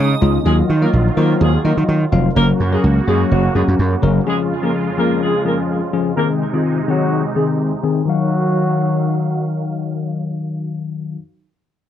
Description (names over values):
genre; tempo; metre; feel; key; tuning
pop; 126 BPM; 4/4; straight; Eb dorian; A4 = 440 Hz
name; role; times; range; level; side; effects
bell-like tine electric piano; accompaniment; 0.0-11.2 s; Eb3 to F5; -19 LUFS; left 6 dB; auto-pan, low-pass filter
filtered supersaw swell; sustained chords; 0.0-11.2 s; F2 to F5; -23 LUFS; right 4 dB; low-pass filter
gritty slap bass; bass; 0.0-4.2 s; F1 to Eb3; -15 LUFS; right 1 dB; overdrive
dark horn section; melody; 0.5-9.5 s; Gb3 to Bb4; -22 LUFS; right 2 dB; low-pass filter, tape echo
room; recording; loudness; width
light reverb; dry, close 1970s-style studio recording; -14 LUFS; side -10 dB against mid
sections
0.5-8.1 A section; 8.1-11.9 B section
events
filter sweep 0.5-8.1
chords
0.5 Ebmadd9; 2.4 Gb; 4.3 Db/F; 6.2 Ab; 8.1 Ebmadd9